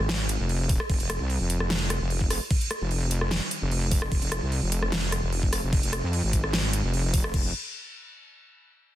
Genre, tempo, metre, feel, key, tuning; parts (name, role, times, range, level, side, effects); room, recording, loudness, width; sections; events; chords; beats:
heavy wobble dubstep; 149 BPM; 4/4; half-time; F minor; A4 = 439 Hz
wobble bass; bass; 0.0-7.5 s; F1 to F2; -27 LUFS; equal; chorus, overdrive
dubstep drum kit; drums; 0.1-7.4 s; crash cymbal, hi-hat, rim click, snare drum; -29 LUFS; right 1 dB; overdrive
electronic kick drum; drums; 0.7-7.4 s; -25 LUFS; equal; overdrive
little or no reverb; dense, heavily limited modern master; -24 LUFS; side -13 dB against mid
0.0-7.3 A section; 7.3-8.9 B section
drop 0.0-7.3
0.09 0.49 | 0.90 1.30 1.70 2.10 | 2.51 2.91 3.31 3.71 | 4.12 4.52 4.92 5.33 | 5.73 6.13 6.53 6.94 | 7.34